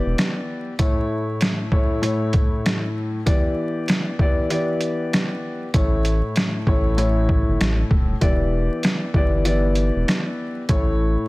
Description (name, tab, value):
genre	hip hop, boom-bap hip-hop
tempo	97 BPM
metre	4/4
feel	swing 60% on 16ths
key	E dorian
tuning	A4 = 437 Hz
part	dark concert grand piano	accompaniment	0.0-11.3 s	A2 to D5	-23 LUFS	left 1 dB	none
part	saturated sub bass	bass	0.1-0.2, 5.7-11.2 s	D#1 to A1	-21 LUFS	equal	none
part	trip hop sampler-style drum kit	drums	0.2-10.9 s	hi-hat, kick drum, snare drum	-20 LUFS	equal	overdrive
room	digital ambience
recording	dense, heavily limited modern master, vinyl crackle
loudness	-18 LUFS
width	side -21 dB against mid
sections	0.0-11.3 A section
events	none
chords	0.0 Em7; 0.8 A; 3.3 Em7; 5.7 A; 8.2 Em7; 10.7 A